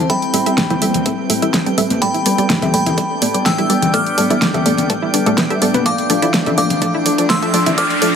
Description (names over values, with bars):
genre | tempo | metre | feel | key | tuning
progressive house | 125 BPM | 4/4 | straight | unclear | A4 = 440 Hz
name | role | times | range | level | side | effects
glassy synth bell | melody | 0.0-8.2 s | F5 to F6 | -20 LUFS | left 1 dB | chorus, digital delay
evolving wavetable pad | sustained chords | 0.0-8.2 s | F3 to D5 | -21 LUFS | equal | chorus, built-in reverb, sidechain pumping
analog pluck | arpeggios | 0.0-8.0 s | A3 to E4 | -23 LUFS | equal | chorus, sidechain pumping, digital delay
drifting glass-harmonics texture | texture | 0.0-8.2 s | G5 | -28 LUFS | right 2 dB | chorus, built-in reverb, sidechain pumping
wide unison pluck | stabs | 0.1-8.1 s | F3 to G5 | -20 LUFS | equal | sidechain pumping, digital delay
electronic kick drum | drums | 0.1-7.9 s | none | -25 LUFS | right 1 dB | overdrive, high-pass filter on kick, high-pass filter on room
pop drum kit | drums | 0.1-8.1 s | hi-hat, snare drum | -19 LUFS | right 1 dB | overdrive
congas | percussion | 0.6-7.8 s | none | -23 LUFS | left 2 dB | sidechain pumping on perc
riser | sound effects | 6.9-8.2 s | none | -25 LUFS | equal | none
room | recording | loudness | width
light reverb, digital ambience | high-pass filter | -13 LUFS | side -7 dB against mid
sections
0.0-8.2 A section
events
build-up 0.0-8.2; filter sweep on synth arpeggio sound 0.0-8.2; riser 6.9-8.2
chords
0.0 Am7; 2.0 Gadd9; 5.9 F6